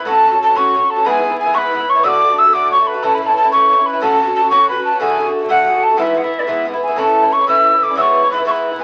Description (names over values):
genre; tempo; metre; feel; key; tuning
celtic folk, Celtic jig; 122 BPM (dotted quarters); 6/8; straight; E mixolydian; A4 = 440 Hz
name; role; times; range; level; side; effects
breathy mellow mid whistle; melody; 0.0-8.8 s; D5 to E6; -15 LUFS; equal; none
accordion; second line; 0.0-8.8 s; E4 to E5; -26 LUFS; equal; none
Irish bouzouki; accompaniment; 0.0-8.8 s; G#2 to F#4; -22 LUFS; equal; none
room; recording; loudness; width
moderate studio reverb, RT60 0.6 s; very old 78 rpm record, vinyl crackle; -14 LUFS; mono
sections
0.0-7.0 A section; 7.0-8.8 B section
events
none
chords
0.1 F#m; 1.0 E; 2.0 D; 3.0 A; 4.0 F#m/A; 5.0 D; 6.0 E; 7.0 A; 8.0 E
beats
| 0.06 0.55 | 1.05 1.54 | 2.04 2.53 | 3.02 3.52 | 4.01 4.50 | 5.00 5.49 | 5.99 6.48 | 6.97 7.47 | 7.96 8.46